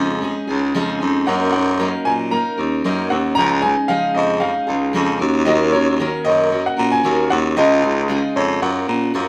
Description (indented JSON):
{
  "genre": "acoustic pop",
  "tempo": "114 BPM",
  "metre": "4/4",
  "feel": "swing 55% on 16ths",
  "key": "F# major",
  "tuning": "A4 = 442 Hz",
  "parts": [
    { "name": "picked steel-string acoustic guitar", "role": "accompaniment", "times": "0.0-9.3 s", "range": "C#3 to A#4", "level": "-23 LUFS", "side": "equal", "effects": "none" },
    { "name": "raspy baritone saxophone", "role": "bass", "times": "0.0-9.3 s", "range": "C#2 to A#2", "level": "-22 LUFS", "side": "equal", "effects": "none" },
    { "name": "warm upright piano", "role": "melody", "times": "1.3-9.3 s", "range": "C#5 to A#5", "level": "-22 LUFS", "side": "equal", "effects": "none" }
  ],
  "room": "moderate studio reverb, RT60 0.8 s",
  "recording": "band playing live in one room",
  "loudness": "-18 LUFS",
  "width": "mono",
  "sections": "0.0-9.3 A section",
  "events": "none",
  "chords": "0.0 C#add9; 1.3 F#6; 3.4 C#add9; 5.2 D#m7; 7.6 C#add9; 8.6 F#maj7"
}